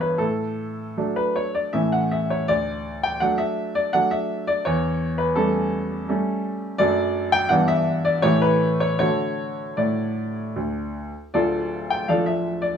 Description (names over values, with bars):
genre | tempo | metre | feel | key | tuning
classical-period piano sonatina | 76-85 BPM | 3/4 | rubato | D major | A4 = 439 Hz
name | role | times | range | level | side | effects
bright baby grand piano | solo | 0.0-12.8 s | D1 to G5 | -20 LUFS | equal | none
room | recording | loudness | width
moderate studio reverb, RT60 0.7 s | small room ambience | -20 LUFS | side -7 dB against mid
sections
0.0-11.3 A section; 11.3-12.8 B section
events
none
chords
0.2 D/A; 1.7 A; 2.5 D; 4.6 A7/E; 6.8 D/F#; 7.5 Em7/G; 8.2 A5; 9.0 D; 11.3 Dm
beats
| 0.20 0.97 1.73 | 2.48 3.21 3.93 | 4.65 5.36 6.08 | 6.79 7.50 8.23 | 9.00 9.79 10.56 | 11.34 12.08